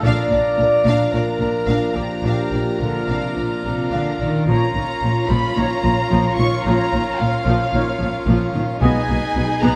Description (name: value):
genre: cinematic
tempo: 110 BPM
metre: 4/4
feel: straight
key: unclear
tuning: A4 = 439 Hz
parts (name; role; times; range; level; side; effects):
- rich symphonic violin section; melody; 0.0-9.8 s; E#5 to C#6; -31 LUFS; equal; none
- rich symphonic viola section; accompaniment; 0.0-9.8 s; D#3 to E#4; -27 LUFS; equal; none
- mellow French horn section; sustained chords; 0.0-9.0 s; B3 to D5; -26 LUFS; equal; none
- mellow trombone section; sustained chords; 0.0-9.0 s; A#2 to Bb3; -31 LUFS; equal; none
- pipe organ, full organ; sustained chords; 0.0-9.8 s; C#4 to F5; -29 LUFS; equal; none
- dark trumpet section; stabs; 0.0-9.0 s; F4 to D#5; -31 LUFS; equal; none
- rich symphonic cello section; bass; 0.0-9.7 s; Bb2 to Eb3; -27 LUFS; equal; none
- warm symphonic double bass section; bass; 0.0-9.7 s; Bb1 to B1; -25 LUFS; equal; none
- warm symphonic violin section; second line; 0.1-9.8 s; E#4 to F5; -31 LUFS; equal; none
- mellow silver concert flute; second line; 4.5-9.8 s; E#5 to C#6; -29 LUFS; equal; none
room: wet scoring stage reverb, RT60 1.4 s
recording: none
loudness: -19 LUFS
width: mono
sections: 0.0-4.5 A section; 4.5-9.8 B section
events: none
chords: 0.0 Bb; 4.5 A#m; 8.8 G#m/B